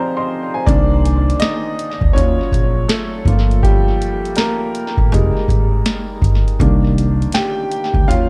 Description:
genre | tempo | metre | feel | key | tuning
lo-fi hip hop | 81 BPM | 4/4 | swing 63% on 16ths | unclear | A4 = 441 Hz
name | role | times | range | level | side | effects
clear upright piano | accompaniment | 0.0-8.3 s | Eb3 to C6 | -22 LUFS | equal | cassette tape, tape echo
upright bass | bass | 0.7-8.3 s | F1 to Eb2 | -19 LUFS | equal | none
booming analog drum machine | drums | 0.7-8.3 s | hi-hat, kick drum, snare drum | -20 LUFS | equal | none
room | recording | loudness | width
studio ambience | echo-heavy mix | -16 LUFS | mono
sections
0.7-8.3 A section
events
upright piano solo 0.7-8.3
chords
0.0 Fm9; 0.7 Cm9; 2.2 Ebm9; 3.3 Gm9; 5.1 Fm9; 6.6 Cm9

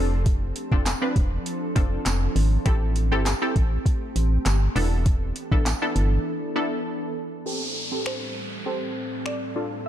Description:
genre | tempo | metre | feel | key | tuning
dance-pop | 100 BPM | 4/4 | straight | A minor | A4 = 440 Hz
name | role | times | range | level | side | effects
punchy chord stab | accompaniment | 0.0-9.9 s | B3 to B4 | -29 LUFS | equal | chorus, sidechain pumping, low-pass filter
glassy FM pad | sustained chords | 0.0-9.9 s | F2 to A4 | -32 LUFS | right 1 dB | ensemble chorus, built-in reverb, sidechain pumping, low-pass filter
organ-like FM bass | bass | 0.0-6.2 s | E1 to A1 | -23 LUFS | equal | sidechain pumping
smooth R&B drum kit | drums | 0.3-9.4 s | finger snaps, handclaps, hi-hat, kick drum, snare drum | -24 LUFS | equal | none
tambourine | percussion | 0.9-5.8 s | none | -36 LUFS | right 11 dB | none
downlifter | sound effects | 7.5-9.9 s | none | -32 LUFS | equal | none
glassy wavetable pluck | melody | 8.1-9.9 s | C5 to D5 | -33 LUFS | right 2 dB | chorus, low-pass filter, tape echo
room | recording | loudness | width
little or no reverb | dark, warm production | -22 LUFS | side -11 dB against mid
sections
0.0-7.5 A section; 7.5-9.9 B section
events
drop 0.0-7.5; break 6.3-7.5; filter sweep 7.5-9.9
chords
0.0 F6; 2.7 Am7; 4.8 E7sus4; 7.5 Am7

